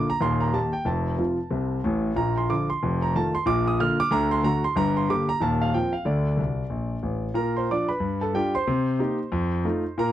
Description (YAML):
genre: jazz, stride piano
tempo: 185 BPM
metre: 4/4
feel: swing 60% on 8ths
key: Bb major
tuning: A4 = 440 Hz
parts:
  - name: clear grand piano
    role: solo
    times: 0.0-10.1 s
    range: Eb1 to F6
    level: -22 LUFS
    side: equal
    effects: none
room: moderate booth ambience, RT60 0.2 s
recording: dry, close 1970s-style studio recording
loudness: -22 LUFS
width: side -12 dB against mid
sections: 0.0-7.4 A section; 7.4-10.1 A section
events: grand piano fill 6.4-7.4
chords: 0.2 Eb; 0.9 F; 2.2 Bb; 2.8 F7; 3.5 Bb; 4.1 D; 4.8 Gm; 5.4 F5/Eb; 6.1 Bb; 8.0 G7; 8.7 Cm7; 9.3 F7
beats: 0.22 0.55 | 0.87 1.19 1.52 1.84 | 2.17 2.49 2.82 3.14 | 3.47 3.79 4.12 4.44 | 4.76 5.09 5.41 5.74 | 6.06 6.39 6.71 7.04 | 7.36 7.69 8.01 8.34 | 8.66 8.99 9.31 9.64 | 9.96